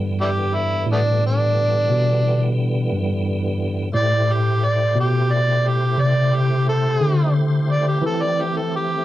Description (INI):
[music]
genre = slow blues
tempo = 59 BPM (dotted quarters)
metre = 12/8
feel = straight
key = unclear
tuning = A4 = 440 Hz
[part]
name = tonewheel organ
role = sustained chords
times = 0.0-9.0 s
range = D3 to C5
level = -28 LUFS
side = equal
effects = slow rotary speaker, overdrive, chorus vibrato
[part]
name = tine electric piano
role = bass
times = 0.0-9.0 s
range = G2 to E3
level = -19 LUFS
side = left 1 dB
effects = overdrive, fast stereo tremolo
[part]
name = overdriven harmonica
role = melody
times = 0.2-9.0 s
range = A3 to D5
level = -21 LUFS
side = right 1 dB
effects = none
[sound]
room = moderate studio ambience, RT60 0.5 s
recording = band playing live in one room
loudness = -17 LUFS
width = side -14 dB against mid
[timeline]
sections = 0.0-9.0 A section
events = harmonica solo 0.0-9.0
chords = 0.0 Em7; 3.9 Am7